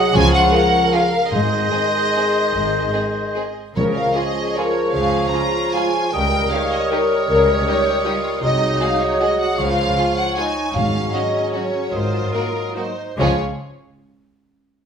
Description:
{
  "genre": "classical",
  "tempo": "138-169 BPM",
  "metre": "3/4",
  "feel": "rubato",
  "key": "Db major",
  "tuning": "A4 = 440 Hz",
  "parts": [
    { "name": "rich symphonic violin section", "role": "melody", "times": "0.0-13.4 s", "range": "Bb4 to Bb5", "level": "-24 LUFS", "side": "equal", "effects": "none" },
    { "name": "dark clarinet", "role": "second line", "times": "0.0-13.3 s", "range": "Ab4 to Bb4", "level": "-29 LUFS", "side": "left 3 dB", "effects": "none" },
    { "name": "mellow hollow flute section", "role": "second line", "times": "0.0-13.4 s", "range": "Bb4 to Bb5", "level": "-24 LUFS", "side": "left 1 dB", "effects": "none" },
    { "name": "mellow oboe", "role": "second line", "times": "0.0-13.4 s", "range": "C5 to Eb5", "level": "-26 LUFS", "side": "equal", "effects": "none" },
    { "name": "rich studio viola section", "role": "accompaniment", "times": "0.0-13.4 s", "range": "Ab3 to Db5", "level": "-25 LUFS", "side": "left 2 dB", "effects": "none" },
    { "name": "warm bassoon", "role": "accompaniment", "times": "0.0-13.4 s", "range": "Eb3 to G3", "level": "-26 LUFS", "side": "right 2 dB", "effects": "none" },
    { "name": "mellow French horn section", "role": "sustained chords", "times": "0.0-13.4 s", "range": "F3 to Ab4", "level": "-26 LUFS", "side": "left 1 dB", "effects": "none" },
    { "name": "dark chamber double bass section", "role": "bass", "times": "0.1-13.4 s", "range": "Ab1 to Db2", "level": "-26 LUFS", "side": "equal", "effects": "none" },
    { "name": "warm chamber cello section", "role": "bass", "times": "0.1-13.4 s", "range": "Ab2 to Db3", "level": "-28 LUFS", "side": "equal", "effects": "none" },
    { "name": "timpani", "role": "percussion", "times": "0.1-4.3, 10.8-13.4 s", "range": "Ab2 to Db3", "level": "-27 LUFS", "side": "right 1 dB", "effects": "none" },
    { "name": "warm chamber violin section", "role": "second line", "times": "0.5-13.4 s", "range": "Bb3 to Ab4", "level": "-28 LUFS", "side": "right 1 dB", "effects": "none" }
  ],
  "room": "wet stone room reverb, RT60 1.0 s",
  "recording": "minimal, uncompressed stereo recording",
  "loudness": "-16 LUFS",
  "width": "side -7 dB against mid",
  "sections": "0.0-13.2 A section; 13.2-14.4 B section",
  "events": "slowing down 10.2-13.2",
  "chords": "0.1 Db; 1.3 Ab; 3.8 Db; 6.1 Eb7/Db; 8.4 Ab7/C; 9.6 Db; 10.7 Ab7sus4; 11.9 Ab9; 13.2 Db",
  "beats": "| 0.14 0.52 0.92 | 1.31 1.72 2.14 | 2.54 2.94 3.37 | 3.76 4.16 4.57 | 4.95 5.33 5.74 | 6.13 6.51 6.91 | 7.29 7.67 8.06 | 8.43 8.81 9.21 | 9.59 9.97 10.37 | 10.75 11.13 11.54 | 11.93 12.33 12.76 | 13.18"
}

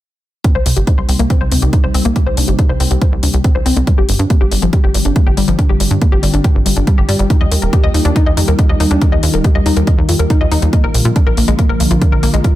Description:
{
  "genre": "uplifting trance",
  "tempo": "140 BPM",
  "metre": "4/4",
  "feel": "straight",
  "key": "C minor",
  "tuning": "A4 = 440 Hz",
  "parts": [
    { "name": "lush unison pad", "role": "sustained chords", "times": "0.4-12.6 s", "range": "C3 to Bb4", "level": "-20 LUFS", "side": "equal", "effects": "chorus, sidechain pumping" },
    { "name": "analog pluck", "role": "arpeggios", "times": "0.4-12.5 s", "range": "G2 to Eb5", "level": "-19 LUFS", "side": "left 4 dB", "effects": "chorus, sidechain pumping, ping-pong delay" },
    { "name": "electronic hi-hat", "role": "drums", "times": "0.4-12.5 s", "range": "none", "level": "-22 LUFS", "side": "left 3 dB", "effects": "overdrive, sidechain pumping on hats" },
    { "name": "electronic kick drum", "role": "drums", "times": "0.4-12.5 s", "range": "none", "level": "-13 LUFS", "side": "right 1 dB", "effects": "overdrive" },
    { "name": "tight sequencer bass", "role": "bass", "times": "0.6-12.4 s", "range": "Eb1 to Bb2", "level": "-15 LUFS", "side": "right 1 dB", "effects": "sidechain pumping" }
  ],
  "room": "little or no reverb",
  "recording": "none",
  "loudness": "-10 LUFS",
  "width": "side -14 dB against mid",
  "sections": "0.4-12.6 A section",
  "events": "filter sweep on synth pluck 0.4-12.6; filter sweep on analog synth pad 0.4-12.6",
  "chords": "0.4 Cm7; 3.9 G7sus4; 7.3 Ebadd9; 10.7 Bb",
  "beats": "| 0.44 0.87 1.30 1.73 | 2.16 2.59 3.02 3.44 | 3.87 4.30 4.73 5.16 | 5.59 6.01 6.44 6.87 | 7.30 7.73 8.16 8.59 | 9.02 9.44 9.87 10.30 | 10.73 11.16 11.59 12.02 | 12.44"
}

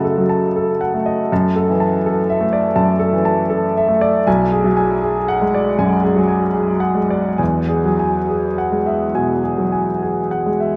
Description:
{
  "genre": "classical, impressionist solo piano",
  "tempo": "66-86 BPM",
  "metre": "4/4",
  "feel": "rubato",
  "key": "unclear",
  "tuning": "A4 = 440 Hz",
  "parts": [
    { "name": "clear concert grand piano", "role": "solo", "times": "0.0-10.8 s", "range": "B1 to A5", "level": "-17 LUFS", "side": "equal", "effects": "none" }
  ],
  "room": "wet huge ambient reverb, RT60 7.7 s",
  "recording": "in a vast, echoing space",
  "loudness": "-17 LUFS",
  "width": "mono",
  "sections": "0.0-10.8 A section",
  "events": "none",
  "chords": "0.0 F#m6; 1.3 E9sus4/F#; 4.3 Bm6; 7.4 Eadd9",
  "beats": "0.55 | 1.31 2.05 2.76 3.50 | 4.27 5.02 5.79 6.56 | 7.40 8.30 9.16 10.02"
}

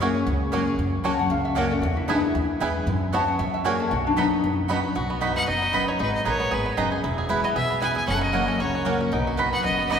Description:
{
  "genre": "bluegrass",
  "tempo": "230 BPM",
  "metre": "4/4",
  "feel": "swing 56% on 8ths",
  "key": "B major",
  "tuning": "A4 = 440 Hz",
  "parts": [
    { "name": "lap resonator guitar", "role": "second line", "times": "0.0-10.0 s", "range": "D4 to A5", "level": "-28 LUFS", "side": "left 3 dB", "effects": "none" },
    { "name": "picked steel-string acoustic guitar", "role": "accompaniment", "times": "0.0-10.0 s", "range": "E2 to A#4", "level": "-27 LUFS", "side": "left 2 dB", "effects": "none" },
    { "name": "bluegrass banjo", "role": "arpeggios", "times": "0.0-10.0 s", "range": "B3 to B4", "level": "-29 LUFS", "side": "right 2 dB", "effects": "none" },
    { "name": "mandolin", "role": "stabs", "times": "0.0-10.0 s", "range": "A#3 to B5", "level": "-29 LUFS", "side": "right 4 dB", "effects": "none" },
    { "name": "upright bass", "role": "bass", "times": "0.0-10.0 s", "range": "E1 to F#2", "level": "-29 LUFS", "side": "equal", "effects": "none" },
    { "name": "clear fiddle", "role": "melody", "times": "5.4-10.0 s", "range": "B4 to G#5", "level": "-26 LUFS", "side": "equal", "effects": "none" }
  ],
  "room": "wet church reverb, RT60 3.4 s",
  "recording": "recorded in a church or concert hall",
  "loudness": "-21 LUFS",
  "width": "side -7 dB against mid",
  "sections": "0.0-5.0 A section; 5.0-10.0 B section",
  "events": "resonator guitar played with a steel bar solo 0.0-5.0",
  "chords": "0.0 F#add9; 0.8 F#; 1.8 E; 2.9 F#sus4; 3.4 F#add9; 3.9 B; 6.0 G#madd9; 7.0 E; 8.1 F#; 9.1 B",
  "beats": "0.01 0.27 0.53 | 0.79 1.05 1.31 1.57 | 1.83 2.09 2.35 2.61 | 2.87 3.13 3.39 3.65 | 3.91 4.17 4.43 4.70 | 4.96 5.22 5.48 5.74 | 6.00 6.26 6.52 6.78 | 7.04 7.30 7.56 7.82 | 8.08 8.34 8.60 8.86 | 9.12 9.38 9.64 9.90"
}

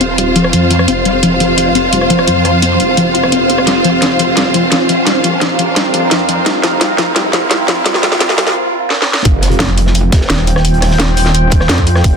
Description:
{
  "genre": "dark technical drum and bass",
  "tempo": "172 BPM",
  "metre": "4/4",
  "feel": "straight",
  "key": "unclear",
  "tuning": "A4 = 440 Hz",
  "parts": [
    { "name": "deep dark ambient pad", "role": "sustained chords", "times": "0.0-12.2 s", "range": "C4 to G5", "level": "-16 LUFS", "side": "equal", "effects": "chorus, built-in reverb, sidechain pumping" },
    { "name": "warbly dusty pluck", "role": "arpeggios", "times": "0.0-8.5 s", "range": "F3 to F4", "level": "-18 LUFS", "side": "left 3 dB", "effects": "chorus, sidechain pumping, ping-pong delay" },
    { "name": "growl bass", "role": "bass", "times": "0.0-12.2 s", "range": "Eb1 to F2", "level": "-19 LUFS", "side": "equal", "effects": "chorus, overdrive" },
    { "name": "drum and bass drum kit", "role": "drums", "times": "0.0-12.1 s", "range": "hi-hat, rim click, snare drum", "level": "-15 LUFS", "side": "equal", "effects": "none" },
    { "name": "riser and impact", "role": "sound effects", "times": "1.8-10.6 s", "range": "none", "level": "-22 LUFS", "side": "right 1 dB", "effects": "none" },
    { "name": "warm studio string section", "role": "texture", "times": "0.0-8.6 s", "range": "F4 to F5", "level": "-16 LUFS", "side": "right 1 dB", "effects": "sidechain pumping" },
    { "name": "crunchy breakbeat drum kit", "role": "drums", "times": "9.2-12.1 s", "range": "hi-hat, snare drum", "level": "-23 LUFS", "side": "right 1 dB", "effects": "high-pass filter on hats, high-pass filter on snare, high-pass filter on room" },
    { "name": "electronic kick drum", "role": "drums", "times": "9.3-12.1 s", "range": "none", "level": "-11 LUFS", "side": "equal", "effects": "none" },
    { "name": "metallic wobble bass", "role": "bass", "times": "9.6-12.0 s", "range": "Eb1 to F2", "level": "-12 LUFS", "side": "equal", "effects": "chorus" }
  ],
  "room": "light reverb, digital ambience",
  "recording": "dense, heavily limited modern master, high-pass filter",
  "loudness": "-9 LUFS",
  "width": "side -5 dB against mid",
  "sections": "0.0-9.3 A section; 9.3-12.2 B section",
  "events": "build-up 0.0-9.3; filter sweep on synth arpeggio sound 0.0-9.3; riser 1.8-8.6; drum fill 3.7-8.6, 8.9-9.3; drop 9.3-12.2; impact 9.3-10.6",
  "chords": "0.0 F5",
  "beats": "0.18 0.53 | 0.88 1.23 1.58 1.93 | 2.27 2.62 2.97 3.32 | 3.67 4.02 4.37 4.72 | 5.07 5.42 5.76 6.11 | 6.46 6.81 7.16 7.51 | 7.86 8.21 8.55 8.90 | 9.25 9.60 9.95 10.30 | 10.65 11.00 11.35 11.69 | 12.04"
}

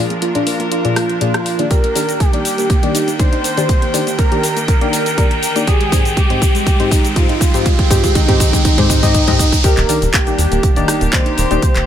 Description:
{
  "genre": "progressive house",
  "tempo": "121 BPM",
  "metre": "4/4",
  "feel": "straight",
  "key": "Eb major",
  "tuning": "A4 = 437 Hz",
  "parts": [
    { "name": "wide unison lead", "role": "melody", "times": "0.0-11.9 s", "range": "Eb4 to C5", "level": "-20 LUFS", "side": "right 1 dB", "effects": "tape echo" },
    { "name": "rich chamber string section", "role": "sustained chords", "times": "0.0-11.9 s", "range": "Eb3 to G5", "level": "-24 LUFS", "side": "equal", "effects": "sidechain pumping" },
    { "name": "soft round pluck", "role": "arpeggios", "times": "0.0-11.8 s", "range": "Ab3 to G4", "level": "-23 LUFS", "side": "equal", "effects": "wide subtle chorus, sidechain pumping, tape echo" },
    { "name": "deep mellow chord stab", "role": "stabs", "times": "0.0-11.6 s", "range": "Ab2 to Eb5", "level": "-21 LUFS", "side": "left 3 dB", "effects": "chorus, cassette tape, sidechain pumping, tape echo" },
    { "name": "riser and sub drop", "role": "sound effects", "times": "0.0-11.6 s", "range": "none", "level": "-24 LUFS", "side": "right 1 dB", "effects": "none" },
    { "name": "house drum kit", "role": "drums", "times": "0.1-11.8 s", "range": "handclaps, hi-hat, rim click, shaker", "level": "-22 LUFS", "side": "left 1 dB", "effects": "sidechain pumping on hats, high-pass filter on hats, high-pass filter on snare, sidechain pumping on perc, high-pass filter on perc, high-pass filter on room" },
    { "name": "electronic kick drum", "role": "drums", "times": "1.7-11.7 s", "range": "none", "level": "-14 LUFS", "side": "equal", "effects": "none" },
    { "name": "tight sequencer bass", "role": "bass", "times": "9.8-11.8 s", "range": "Eb1 to Eb2", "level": "-17 LUFS", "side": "equal", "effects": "sidechain pumping" }
  ],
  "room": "light reverb",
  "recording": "none",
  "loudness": "-12 LUFS",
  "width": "side -10 dB against mid",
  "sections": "0.0-9.6 A section; 9.6-11.9 B section",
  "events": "build-up 0.0-9.6; riser 0.0-9.6; filter sweep on synth pluck 0.0-9.6; filter sweep on synth stab 0.0-9.6; drum fill 1.7-9.6; drop 9.6-11.9; impact 9.6-11.6",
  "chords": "0.0 Bb7; 1.7 Ebmaj7; 5.7 Abmaj7; 9.6 Ebmaj7",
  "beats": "0.22 0.71 1.21 | 1.71 2.20 2.70 3.19 | 3.69 4.19 4.68 5.18 | 5.67 6.17 6.67 7.16 | 7.66 8.15 8.65 9.14 | 9.64 10.14 10.63 11.13 | 11.62"
}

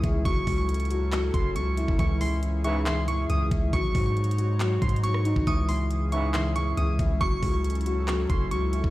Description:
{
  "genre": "hip hop, trap",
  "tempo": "138 BPM",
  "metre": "4/4",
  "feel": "half-time",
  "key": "C# harmonic minor",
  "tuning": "A4 = 439 Hz",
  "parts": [
    { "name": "felt-muted upright piano", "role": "accompaniment", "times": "0.0-8.9 s", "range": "E3 to E5", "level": "-30 LUFS", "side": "left 2 dB", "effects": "none" },
    { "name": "airy breathy pad", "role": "sustained chords", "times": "0.0-8.9 s", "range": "C#3 to C#5", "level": "-36 LUFS", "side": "right 1 dB", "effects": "chorus" },
    { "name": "long sustained 808-style bass", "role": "bass", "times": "0.0-8.9 s", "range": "F#1 to G#2", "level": "-26 LUFS", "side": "equal", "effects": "none" },
    { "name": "trap drum kit", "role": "drums", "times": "0.0-8.9 s", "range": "handclaps, hi-hat, kick drum, rim click", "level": "-28 LUFS", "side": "equal", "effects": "none" },
    { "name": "soft electric-piano-like synth keys", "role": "melody", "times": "0.3-8.9 s", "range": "B#5 to D#6", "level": "-33 LUFS", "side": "right 2 dB", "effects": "chorus, tape echo" },
    { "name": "warm brass ensemble", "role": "stabs", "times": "2.6-3.0, 6.1-6.4 s", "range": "G#2 to E3", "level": "-32 LUFS", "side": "right 2 dB", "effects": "none" },
    { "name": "glassy synth bell", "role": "second line", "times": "5.5-8.5 s", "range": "C#6 to D#6", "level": "-38 LUFS", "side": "right 2 dB", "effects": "chorus, tape echo" }
  ],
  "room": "little or no reverb",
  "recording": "played on a big sound system in a bare room, large studio reverb, vinyl crackle",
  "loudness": "-23 LUFS",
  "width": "side -17 dB against mid",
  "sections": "0.0-8.9 A section",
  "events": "none",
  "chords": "0.3 F#m7; 2.0 C#m; 3.7 G#7sus4; 5.5 C#m; 7.2 F#m7",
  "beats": "| 0.25 0.69 1.12 1.56 | 1.99 2.43 2.86 3.30 | 3.73 4.17 4.60 5.04 | 5.47 5.91 6.34 6.78 | 7.21 7.64 8.08 8.51"
}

